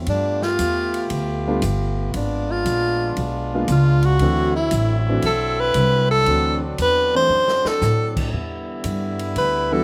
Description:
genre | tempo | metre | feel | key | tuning
jazz, big band swing | 116 BPM | 4/4 | swing 68% on 8ths | unclear | A4 = 441 Hz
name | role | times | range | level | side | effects
bright trombone section | sustained chords | 0.0-9.8 s | D3 to G4 | -30 LUFS | equal | none
upright bass | bass | 0.0-9.8 s | G1 to A2 | -24 LUFS | equal | none
breathy tenor saxophone | melody | 0.1-9.8 s | D4 to C5 | -22 LUFS | equal | slapback echo
swinging big-band drum kit | drums | 0.1-9.5 s | crash cymbal, hi-hat, kick drum, ride cymbal, snare drum | -36 LUFS | equal | none
warm concert grand piano | accompaniment | 1.5-9.8 s | E3 to F#4 | -26 LUFS | equal | none
room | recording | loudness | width
little or no reverb | recorded outdoors, with no room sound | -20 LUFS | mono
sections
0.0-9.8 A section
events
tenor saxophone solo 0.0-9.8; drum fill 7.3-7.8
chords
0.1 G9; 2.1 G#dim7; 4.2 D9; 8.3 Em7

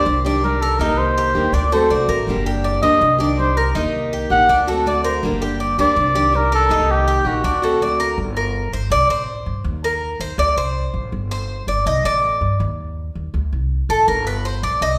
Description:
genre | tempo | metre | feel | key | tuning
latin, Cuban son and guajira | 163 BPM | 4/4 | straight | G harmonic minor | A4 = 440 Hz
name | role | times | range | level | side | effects
trumpet with cup mute | melody | 0.0-8.0 s | F#4 to F#5 | -20 LUFS | equal | none
picked steel-string acoustic guitar | accompaniment | 0.0-8.2 s | D3 to G4 | -25 LUFS | equal | none
Cuban tres | arpeggios | 0.0-15.0 s | D4 to Eb5 | -23 LUFS | equal | none
upright bass | bass | 0.0-15.0 s | F#1 to G2 | -25 LUFS | equal | none
room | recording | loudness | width
wet recital hall reverb, RT60 1.4 s | recorded in a church or concert hall | -18 LUFS | mono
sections
0.0-8.2 A section; 8.2-15.0 B section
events
Cuban tres solo 8.2-15.0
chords
0.1 Cmadd9; 0.8 Eb; 1.5 D7; 2.3 Gm; 3.0 Cmadd9; 3.8 Eb; 4.5 D7; 5.2 Gm; 6.0 Cmadd9; 6.7 Eb; 7.4 D7; 8.2 Gm; 8.9 C5; 9.6 Eb5; 10.4 D5; 11.1 Gsus4; 11.9 Csus2; 12.6 N.C.; 13.3 D5; 14.1 Gm

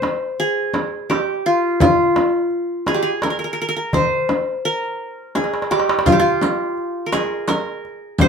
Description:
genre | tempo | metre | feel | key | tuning
Arabic maqam ensemble | 85 BPM | 3/4 | straight | C maqam bayati | A4 = 436 Hz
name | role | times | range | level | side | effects
qanun | melody | 0.0-8.3 s | F4 to C5 | -18 LUFS | equal | none
darbuka | percussion | 0.0-8.3 s | none | -23 LUFS | equal | none
frame drum | percussion | 0.0-8.3 s | none | -21 LUFS | left 1 dB | none
riq | percussion | 6.1-8.3 s | none | -26 LUFS | right 2 dB | none
room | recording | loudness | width
moderate studio reverb, RT60 0.6 s | minimal, uncompressed stereo recording | -17 LUFS | side -6 dB against mid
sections
0.0-8.3 A section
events
drum fill 5.4-6.1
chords
none

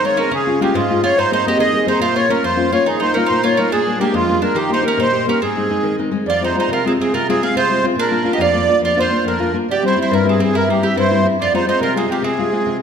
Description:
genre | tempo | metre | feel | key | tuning
italian folk, Italian serenade | 141 BPM (dotted quarters) | 6/8 | rubato | Ab major, F dorian from 6.3 s | A4 = 440 Hz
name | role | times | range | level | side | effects
accordion | melody | 0.0-12.8 s | F4 to F5 | -17 LUFS | right 2 dB | light tremolo tuning
mandolin | second line | 0.0-12.8 s | Ab3 to Ab4 | -22 LUFS | right 4 dB | none
nylon-string guitar | accompaniment | 0.0-12.8 s | F2 to Ab4 | -18 LUFS | left 3 dB | none
room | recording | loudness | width
wet recital hall reverb, RT60 1.7 s | none | -14 LUFS | side -7 dB against mid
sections
0.0-6.3 A section; 6.3-12.8 B section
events
none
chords
0.3 Db; 1.2 Abadd9; 2.0 Bbm; 2.9 Ebsus2; 3.7 Bb7; 4.6 Eb; 5.4 Ab; 6.3 Fm; 8.0 Bb; 9.7 C; 11.4 Fm

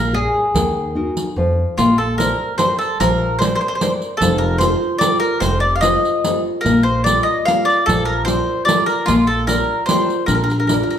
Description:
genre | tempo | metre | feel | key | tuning
italian folk, Italian serenade | 148 BPM | 3/4 | straight | Bb major | A4 = 437 Hz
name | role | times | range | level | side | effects
mandolin | melody | 0.0-11.0 s | F4 to F5 | -18 LUFS | left 1 dB | none
nylon-string guitar | accompaniment | 0.0-11.0 s | C3 to D5 | -20 LUFS | left 1 dB | none
upright bass | bass | 0.0-10.8 s | F1 to F2 | -22 LUFS | equal | none
riq | percussion | 0.6-11.0 s | none | -23 LUFS | right 2 dB | none
room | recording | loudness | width
wet large studio reverb, RT60 1.2 s | band playing live in one room | -15 LUFS | side -9 dB against mid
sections
0.0-1.8 A section; 1.8-11.0 B section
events
none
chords
0.0 Bb7; 0.5 Ebm; 1.4 N.C.; 1.8 Bbadd9; 4.2 F; 6.6 Bb

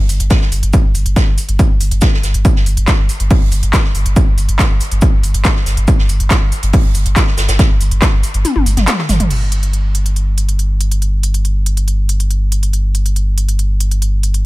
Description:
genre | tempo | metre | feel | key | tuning
driving peak-time techno | 140 BPM | 4/4 | straight | unclear | A4 = 440 Hz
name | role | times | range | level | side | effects
warm sub bass | bass | 0.0-14.5 s | G1 | -14 LUFS | equal | sidechain pumping, low-pass filter
swinging big-band drum kit | drums | 0.1-9.2 s | hi-hat, shaker, snare drum | -24 LUFS | right 2 dB | high-pass filter on hats, high-pass filter on snare, high-pass filter on perc, high-pass filter on room
techno drum kit | drums | 0.1-14.4 s | crash cymbal, handclaps, hi-hat, toms | -20 LUFS | equal | overdrive
electronic kick drum | drums | 0.3-8.1 s | none | -12 LUFS | equal | none
room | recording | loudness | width
studio ambience | none | -11 LUFS | side -19 dB against mid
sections
0.0-9.3 A section; 9.3-14.5 B section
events
kick drops out 8.4-9.3; drum fill 8.4-9.3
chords
none

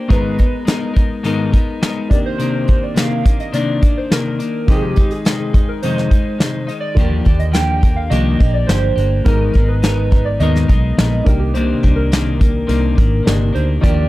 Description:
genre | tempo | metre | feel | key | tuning
indie pop, bedroom pop | 105 BPM | 4/4 | straight | unclear | A4 = 440 Hz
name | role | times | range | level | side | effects
warbly lo-fi synth keys | melody | 0.0-14.1 s | G4 to G5 | -24 LUFS | right 2 dB | wide subtle chorus, analog delay
clean electric guitar | accompaniment | 0.0-14.1 s | F2 to Bb4 | -20 LUFS | left 3 dB | wide subtle chorus, vibrato effect
warm upright piano | accompaniment | 0.0-14.1 s | C3 to Bb5 | -30 LUFS | right 4 dB | cassette tape
soft brush drum kit | drums | 0.1-14.0 s | hi-hat, kick drum, snare drum | -15 LUFS | equal | none
vintage muted fingered electric bass | bass | 7.0-14.1 s | G1 to Eb2 | -17 LUFS | equal | transformer saturation
room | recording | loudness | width
little or no reverb | dry, gritty hardware recording | -13 LUFS | side -17 dB against mid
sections
0.0-14.1 A section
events
none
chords
0.1 Abmadd9; 2.1 Cm9; 4.7 Fm7; 7.0 Ebmaj9; 9.3 Abmadd9; 11.3 Cm9

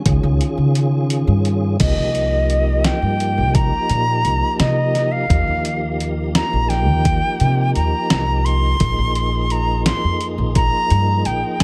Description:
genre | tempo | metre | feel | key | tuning
progressive instrumental, band music in an uneven meter | 172 BPM (eighths) | 5/8 | straight | unclear | A4 = 440 Hz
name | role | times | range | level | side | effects
mellow tonewheel organ | accompaniment | 0.0-11.6 s | Eb3 to Ab4 | -27 LUFS | equal | chorus vibrato, fast rotary speaker, tape echo
upright bass | bass | 0.1-11.6 s | Bb1 to Db3 | -21 LUFS | equal | none
dusty soul sampler-style drum kit | drums | 0.1-11.6 s | crash cymbal, hi-hat, kick drum, snare drum | -23 LUFS | equal | overdrive
silver concert flute | melody | 1.8-11.6 s | Eb5 to C6 | -23 LUFS | equal | tape echo
room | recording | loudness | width
light reverb | echo-heavy mix | -18 LUFS | mono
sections
0.0-1.8 A section; 1.8-11.6 B section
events
kick and snare drop out 1.1-1.8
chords
0.1 Db; 1.8 Cm7; 5.3 Ebadd9; 8.8 Bbsus2

